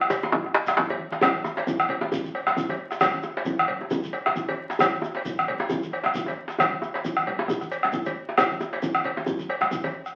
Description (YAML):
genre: west african traditional, West African drum ensemble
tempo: 134 BPM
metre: 4/4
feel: swing 56% on 16ths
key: none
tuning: none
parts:
  - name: bombo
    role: percussion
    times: 0.0-10.1 s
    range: none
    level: -27 LUFS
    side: equal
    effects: none
  - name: congas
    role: percussion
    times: 0.0-9.9 s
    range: none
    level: -43 LUFS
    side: equal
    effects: none
  - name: djembe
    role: percussion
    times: 0.0-9.9 s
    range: none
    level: -32 LUFS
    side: equal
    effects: none
  - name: cowbell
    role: percussion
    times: 0.1-9.9 s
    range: none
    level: -34 LUFS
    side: equal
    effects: none
  - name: djembe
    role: percussion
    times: 0.1-0.9 s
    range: none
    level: -26 LUFS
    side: equal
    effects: none
  - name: shekere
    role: percussion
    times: 0.1-10.1 s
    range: none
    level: -43 LUFS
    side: equal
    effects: none
room: wet studio reverb, RT60 0.7 s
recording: very old 78 rpm record, vinyl crackle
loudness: -26 LUFS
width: mono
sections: 0.0-1.2 A section; 1.2-10.2 B section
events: drum fill 0.0-1.2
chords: none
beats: 0.32 0.77 | 1.22 1.67 2.12 2.57 | 3.02 3.47 3.92 4.36 | 4.81 5.26 5.71 6.15 | 6.60 7.04 7.49 7.93 | 8.38 8.82 9.27 9.71